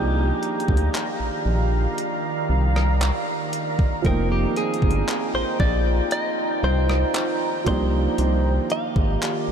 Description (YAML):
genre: contemporary R&B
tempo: 58 BPM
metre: 4/4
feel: straight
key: C minor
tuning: A4 = 440 Hz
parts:
  - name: direct-recorded clean electric guitar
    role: melody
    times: 0.0-9.5 s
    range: G4 to F5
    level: -28 LUFS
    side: equal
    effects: wide subtle chorus, ping-pong delay
  - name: warm concert grand piano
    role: accompaniment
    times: 0.0-9.5 s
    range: F3 to G5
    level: -28 LUFS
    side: right 4 dB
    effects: none
  - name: deep dark ambient pad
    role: sustained chords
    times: 0.0-9.5 s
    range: Eb3 to Bb5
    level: -27 LUFS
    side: right 1 dB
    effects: chorus, built-in reverb
  - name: rubbery square bass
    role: bass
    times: 0.0-9.5 s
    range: F1 to D2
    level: -21 LUFS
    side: equal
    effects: none
  - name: clean 12-bit digital drum machine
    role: drums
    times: 0.4-9.5 s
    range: handclaps, hi-hat, kick drum, rim click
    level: -26 LUFS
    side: equal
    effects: overdrive
room: moderate huge ambient reverb, RT60 7.7 s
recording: dreamy mix soaked in reverb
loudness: -20 LUFS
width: side -8 dB against mid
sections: 0.0-9.5 A section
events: none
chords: 0.0 Cm11; 4.0 F9sus4; 7.7 Cm11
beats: 0.94 1.98 3.01 | 4.05 5.08 6.12 7.15 | 8.19 9.22